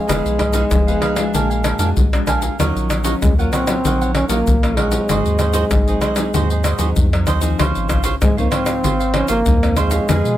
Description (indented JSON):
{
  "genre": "samba and choro",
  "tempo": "96 BPM",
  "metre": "4/4",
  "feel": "straight",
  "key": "unclear",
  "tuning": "A4 = 437 Hz",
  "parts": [
    { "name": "warm trombone", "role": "melody", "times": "0.0-10.4 s", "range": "Ab3 to Db4", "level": "-20 LUFS", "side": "equal", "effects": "none" },
    { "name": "cavaquinho", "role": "accompaniment", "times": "0.0-10.4 s", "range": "D4 to Ab5", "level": "-24 LUFS", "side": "right 6 dB", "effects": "none" },
    { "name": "nylon-string guitar", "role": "accompaniment", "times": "0.0-10.4 s", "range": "Ab2 to Ab4", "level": "-24 LUFS", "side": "left 2 dB", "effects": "none" },
    { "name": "pure sine sub bass", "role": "bass", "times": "0.1-10.4 s", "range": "F1 to Cb3", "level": "-20 LUFS", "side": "equal", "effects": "none" },
    { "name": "egg shaker, surdo, pandeiro and tamborim", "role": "percussion", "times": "0.1-10.4 s", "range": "none", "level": "-19 LUFS", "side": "left 1 dB", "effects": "none" }
  ],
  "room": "light reverb",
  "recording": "close, detailed microphones",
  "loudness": "-14 LUFS",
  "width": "side -13 dB against mid",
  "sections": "0.0-10.4 A section",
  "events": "none",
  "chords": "0.1 Fm7b5; 1.3 Bb7b13; 2.6 Ebm9; 5.1 Ab7; 7.6 Dbmaj9"
}